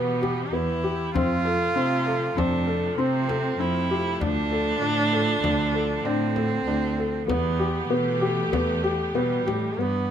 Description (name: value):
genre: contemporary instrumental, chamber music in an uneven meter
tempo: 97 BPM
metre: 5/4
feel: straight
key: E phrygian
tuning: A4 = 440 Hz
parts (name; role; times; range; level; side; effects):
- rich viola; second line; 0.0-10.1 s; G3 to F4; -28 LUFS; right 3 dB; none
- bright symphonic string section; sustained chords; 0.0-10.1 s; C3 to G4; -33 LUFS; right 2 dB; none
- felt-muted upright piano; arpeggios; 0.0-10.1 s; B3 to A4; -26 LUFS; left 3 dB; none
- dark cello; bass; 0.0-10.1 s; D2 to C3; -28 LUFS; right 3 dB; none
- frame drum; percussion; 0.2-9.8 s; none; -31 LUFS; left 2 dB; none
room: light reverb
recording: close, detailed microphones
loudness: -22 LUFS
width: side -9 dB against mid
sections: 0.0-10.1 A section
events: none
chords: 0.0 Em; 1.2 F; 4.2 Dm; 7.3 Em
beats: 0.53 | 1.15 1.77 2.38 2.99 3.60 | 4.21 4.82 5.43 6.05 6.67 | 7.29 7.90 8.53 9.15 9.79